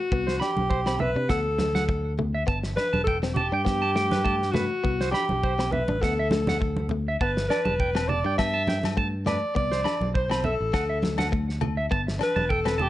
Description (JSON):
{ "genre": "highlife guitar band", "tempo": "102 BPM", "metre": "4/4", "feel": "swing 55% on 16ths", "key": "G major", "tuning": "A4 = 438 Hz", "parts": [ { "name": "breathy alto saxophone", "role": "melody", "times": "0.0-12.9 s", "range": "F#4 to E5", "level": "-27 LUFS", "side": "equal", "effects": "none" }, { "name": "direct-recorded clean electric guitar", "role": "accompaniment", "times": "0.1-12.8 s", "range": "F#3 to D4", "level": "-33 LUFS", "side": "left 4 dB", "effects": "analog chorus" }, { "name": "fingered electric bass", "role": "bass", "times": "0.1-12.9 s", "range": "E1 to C3", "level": "-29 LUFS", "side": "equal", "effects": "none" }, { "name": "cloth-damped thuddy drum kit", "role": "drums", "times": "0.1-12.8 s", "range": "kick drum, snare drum", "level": "-30 LUFS", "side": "equal", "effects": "none" }, { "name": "electric guitar at the edge of break-up", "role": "arpeggios", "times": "0.3-12.9 s", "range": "B4 to B5", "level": "-31 LUFS", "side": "right 3 dB", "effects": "analog delay" }, { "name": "congas", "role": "percussion", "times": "0.6-12.9 s", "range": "none", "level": "-31 LUFS", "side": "right 2 dB", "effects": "none" }, { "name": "agogo bells", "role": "percussion", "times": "7.5-12.8 s", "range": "none", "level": "-35 LUFS", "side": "left 12 dB", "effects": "none" } ], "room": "light reverb", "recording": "nothing above 10.9 kHz", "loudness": "-23 LUFS", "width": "side -14 dB against mid", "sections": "0.0-12.9 A section", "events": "none", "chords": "0.1 Cmaj7(no3); 1.3 D; 2.5 Gadd9; 4.8 Cmaj7(no3); 6.0 Dadd9; 7.2 Gadd9; 9.6 Cmaj7(no3); 10.7 Dadd9; 11.9 Gadd9" }